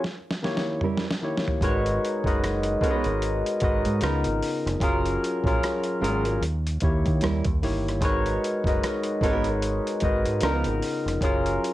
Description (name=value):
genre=R&B, neo-soul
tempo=75 BPM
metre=4/4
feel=swing 60% on 16ths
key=unclear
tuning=A4 = 438 Hz
part: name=barky tine electric piano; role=accompaniment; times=0.0-11.7 s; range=C#3 to D#5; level=-25 LUFS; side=left 1 dB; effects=wide subtle chorus, cassette tape, plate reverb
part: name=boom bap sampler-style drum kit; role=drums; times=0.0-11.7 s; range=hi-hat, kick drum, rim click, snare drum, toms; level=-28 LUFS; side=equal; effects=overdrive, cassette tape
part: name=nylon-string guitar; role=second line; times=0.8-10.7 s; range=E#3 to A#4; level=-29 LUFS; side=right 4 dB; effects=cassette tape, plate reverb
part: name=deep dub fingered electric bass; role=bass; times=1.6-11.6 s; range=E#1 to D#3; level=-28 LUFS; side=equal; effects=none
room=light reverb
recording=home recording on cassette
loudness=-22 LUFS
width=side -15 dB against mid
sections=0.0-11.7 A section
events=drum fill 0.0-1.6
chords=0.0 D#7b9; 1.6 G#m11; 4.0 C#13; 4.8 F#maj9; 6.4 D#7b9; 8.0 G#m11; 10.4 C#13; 11.2 F#maj9